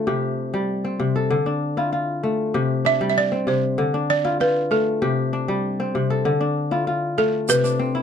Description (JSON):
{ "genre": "west african traditional, West African string and xylophone music", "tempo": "97 BPM", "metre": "4/4", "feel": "straight", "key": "C major", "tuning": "A4 = 439 Hz", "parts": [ { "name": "kora", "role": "arpeggios", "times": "0.0-8.0 s", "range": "C3 to E5", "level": "-21 LUFS", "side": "left 2 dB", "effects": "none" }, { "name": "balafon", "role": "melody", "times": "2.9-8.0 s", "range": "A4 to E5", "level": "-20 LUFS", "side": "right 3 dB", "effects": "none" }, { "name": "tube shaker", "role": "percussion", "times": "7.5-7.7 s", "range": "none", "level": "-27 LUFS", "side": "right 9 dB", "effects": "none" } ], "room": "light reverb", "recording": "dark, warm production", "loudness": "-19 LUFS", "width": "side -8 dB against mid", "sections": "0.0-7.5 A section", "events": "none", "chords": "0.1 C5; 1.3 Dm; 2.5 C5; 3.8 Dm; 5.0 C5; 6.3 Dm; 7.5 C" }